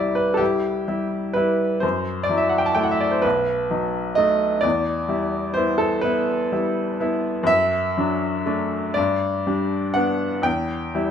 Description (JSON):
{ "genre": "classical, romantic nocturne for solo piano", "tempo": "42 BPM (dotted quarters)", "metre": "6/8", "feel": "rubato", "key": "E minor", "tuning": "A4 = 436 Hz", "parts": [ { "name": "bright baby grand piano", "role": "solo", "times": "0.0-11.1 s", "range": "B1 to A5", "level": "-19 LUFS", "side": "equal", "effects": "none" } ], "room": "moderate large studio reverb, RT60 1.0 s", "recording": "minimal, uncompressed stereo recording", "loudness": "-19 LUFS", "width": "side -8 dB against mid", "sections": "0.0-11.1 A section", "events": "none", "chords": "0.0 C; 1.8 F#m7b5; 3.2 B7; 4.6 Em; 7.5 D/F#; 9.0 G; 10.5 C/E (rootless)" }